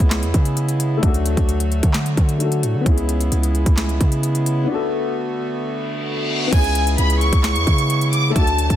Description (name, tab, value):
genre	hip hop, trap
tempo	131 BPM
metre	4/4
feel	half-time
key	C# phrygian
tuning	A4 = 439 Hz
part	dark baby grand piano	accompaniment	0.0-8.8 s	A3 to A4	-26 LUFS	left 6 dB	none
part	hand-pumped harmonium	sustained chords	0.0-8.8 s	C#3 to F#4	-26 LUFS	right 2 dB	none
part	long sustained 808-style bass	bass	0.0-8.8 s	C#2 to D3	-19 LUFS	equal	none
part	trap drum kit	drums	0.0-8.8 s	crash cymbal, handclaps, hi-hat, kick drum, snare drum	-18 LUFS	equal	none
part	reverse cymbal	sound effects	5.8-6.5 s	none	-26 LUFS	left 3 dB	none
part	bright studio violin section	melody	6.5-8.8 s	G#5 to D6	-21 LUFS	right 1 dB	tape echo
room	studio reverb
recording	dense, heavily limited modern master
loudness	-16 LUFS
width	side -11 dB against mid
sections	0.0-6.5 A section; 6.5-8.8 B section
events	break 4.7-6.5; reverse cymbal 5.8-6.5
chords	0.0 C#m7; 1.0 D; 2.9 C#m7; 4.7 Bm7; 6.5 C#m7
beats	0.11 0.57 | 1.03 1.49 1.95 2.40 | 2.86 3.32 3.78 4.24 | 4.69 5.15 5.61 6.07 | 6.53 6.98 7.44 7.90 | 8.36